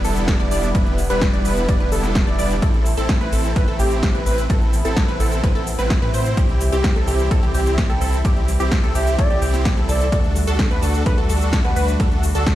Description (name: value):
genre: EDM, festival progressive house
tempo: 128 BPM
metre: 4/4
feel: straight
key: unclear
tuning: A4 = 441 Hz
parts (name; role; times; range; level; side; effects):
- lush unison pad; sustained chords; 0.0-12.6 s; C3 to F#4; -29 LUFS; equal; chorus, sidechain pumping
- wide unison pluck; arpeggios; 0.0-12.6 s; G4 to D5; -27 LUFS; equal; sidechain pumping, ping-pong delay
- supersaw chords; riff; 0.0-12.6 s; G3 to D5; -25 LUFS; right 1 dB; sidechain pumping, ping-pong delay
- saturated sub bass; bass; 0.0-12.6 s; E1 to A2; -22 LUFS; equal; tube saturation, sidechain pumping
- big-room dance drum kit; drums; 0.0-12.6 s; hi-hat, ride cymbal, shaker, snare drum; -28 LUFS; equal; overdrive
- electronic kick drum; drums; 0.3-12.6 s; none; -20 LUFS; equal; overdrive
- baroque flute; melody; 7.9-11.8 s; D5 to G5; -27 LUFS; right 1 dB; ping-pong delay
room: digital ambience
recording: played on a big sound system in a bare room, stone room reverb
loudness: -16 LUFS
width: side -14 dB against mid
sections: 0.0-12.6 A section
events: none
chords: 0.0 Em7; 2.6 Am; 6.4 C; 10.1 D